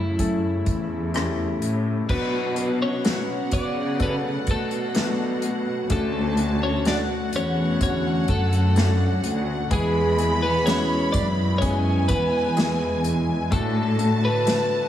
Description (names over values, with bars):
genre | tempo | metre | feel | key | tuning
pop ballad | 63 BPM | 4/4 | straight | D major | A4 = 441 Hz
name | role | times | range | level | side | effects
twelve-string electric guitar | melody | 0.0-14.9 s | G#3 to D5 | -26 LUFS | equal | slapback echo
clear grand piano | accompaniment | 0.0-14.9 s | A2 to D5 | -28 LUFS | left 4 dB | slapback echo
airy breathy pad | sustained chords | 0.0-14.9 s | B2 to F#4 | -32 LUFS | right 2 dB | chorus
warm symphonic cello section | bass | 0.0-14.7 s | D2 to C#3 | -25 LUFS | equal | none
unplugged drum kit | drums | 0.2-14.7 s | crash cymbal, hi-hat, kick drum, rim click, snare drum | -26 LUFS | equal | none
warm studio violin section | second line | 2.1-14.9 s | F#5 to B5 | -31 LUFS | equal | slapback echo
room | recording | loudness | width
moderate lush hall reverb, RT60 2.2 s | big arena sound | -20 LUFS | side -11 dB against mid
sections
0.0-2.1 A section; 2.1-14.9 B section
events
none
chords
0.0 A; 2.1 Bm; 5.9 Dmaj7; 9.7 E; 13.5 D/A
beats
0.19 1.14 | 2.09 3.05 4.00 4.95 | 5.90 6.86 7.81 8.76 | 9.71 10.67 11.62 12.57 | 13.52 14.47